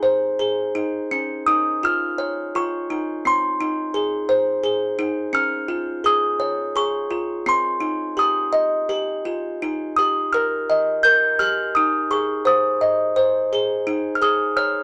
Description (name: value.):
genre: children's music.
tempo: 85 BPM.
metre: 3/4.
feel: straight.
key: Ab major.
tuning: A4 = 440 Hz.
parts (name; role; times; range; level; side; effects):
music box; solo; 0.0-14.8 s; C4 to G6; -21 LUFS; equal; none.
room: moderate club reverb, RT60 0.9 s.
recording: none.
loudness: -21 LUFS.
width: mono.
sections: 0.0-1.1 A section; 1.1-14.8 B section.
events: none.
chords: 0.0 Ab; 1.1 Dbadd9; 3.2 Ab/C; 5.3 Db; 7.5 Cm; 8.2 Ebadd9; 9.6 Eb; 11.7 Ab; 13.9 Ab5/Eb.